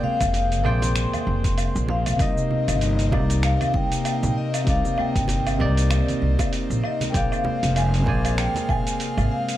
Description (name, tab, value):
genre	sunset chillout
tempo	97 BPM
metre	4/4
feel	swing 57% on 16ths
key	unclear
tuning	A4 = 440 Hz
part	vibraphone with soft mallets	melody	0.0-9.6 s	D5 to C6	-28 LUFS	left 2 dB	digital delay
part	bell-like tine electric piano	accompaniment	0.0-9.6 s	C3 to Ab5	-28 LUFS	equal	auto-pan, digital delay
part	airy breathy pad	sustained chords	0.0-9.6 s	C3 to G5	-30 LUFS	left 1 dB	chorus
part	congas	percussion	0.0-9.3 s	none	-32 LUFS	right 4 dB	none
part	upright bass	bass	0.2-9.3 s	F1 to C2	-23 LUFS	equal	tube saturation
part	dusty soul sampler-style drum kit	drums	0.2-9.6 s	finger snaps, hi-hat, shaker, woodblock	-30 LUFS	right 1 dB	none
part	electronic kick drum	drums	0.2-8.8 s	none	-26 LUFS	equal	none
room	light reverb, digital ambience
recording	dark, warm production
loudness	-20 LUFS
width	side -13 dB against mid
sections	0.0-9.6 A section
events	none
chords	0.0 Bb13; 2.2 Cm9; 7.1 Bb13